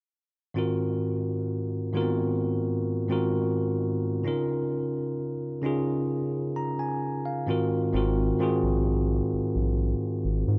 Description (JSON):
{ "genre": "contemporary R&B", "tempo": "65 BPM", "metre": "4/4", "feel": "straight", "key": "unclear", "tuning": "A4 = 440 Hz", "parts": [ { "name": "bell-like tine electric piano", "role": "accompaniment", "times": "0.5-10.6 s", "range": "Ab2 to Bb5", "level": "-28 LUFS", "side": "equal", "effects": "none" }, { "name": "round analog bass", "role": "bass", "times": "7.9-10.6 s", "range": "Ab1 to Ab2", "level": "-29 LUFS", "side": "equal", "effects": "none" } ], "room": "light reverb", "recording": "dry, gritty hardware recording", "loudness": "-28 LUFS", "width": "mono", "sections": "0.6-7.9 A section; 7.9-10.6 B section", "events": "none", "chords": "0.6 Ab13; 4.2 Db6; 7.5 Ab13" }